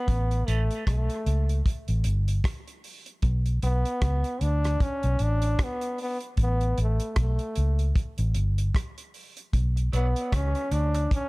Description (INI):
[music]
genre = dub reggae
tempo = 76 BPM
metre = 4/4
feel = swing 58% on 16ths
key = unclear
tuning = A4 = 440 Hz
[part]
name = clear trombone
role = melody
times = 0.0-11.3 s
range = A3 to D4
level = -30 LUFS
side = equal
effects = dub echo
[part]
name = vintage muted fingered electric bass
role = bass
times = 0.1-11.1 s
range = G1 to D2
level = -24 LUFS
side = equal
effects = none
[part]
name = damped 70s drum kit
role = drums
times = 0.1-11.3 s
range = hi-hat, kick drum, rim click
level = -28 LUFS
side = equal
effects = none
[part]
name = semi-hollow electric guitar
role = accompaniment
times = 0.5-0.6, 9.9-10.1 s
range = E3 to D4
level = -42 LUFS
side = right 5 dB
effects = phaser, high-pass filter, dub echo
[part]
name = mellow tonewheel organ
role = accompaniment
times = 9.8-11.0 s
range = B2 to B3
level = -48 LUFS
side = left 3 dB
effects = none
[part]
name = bongos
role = percussion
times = 10.3-11.1 s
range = none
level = -50 LUFS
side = right 3 dB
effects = none
[sound]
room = studio ambience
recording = dark, warm production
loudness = -23 LUFS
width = side -24 dB against mid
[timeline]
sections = 0.0-11.3 A section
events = break 0.0-9.5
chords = 0.1 A; 3.2 Bm; 6.4 A; 9.5 Bm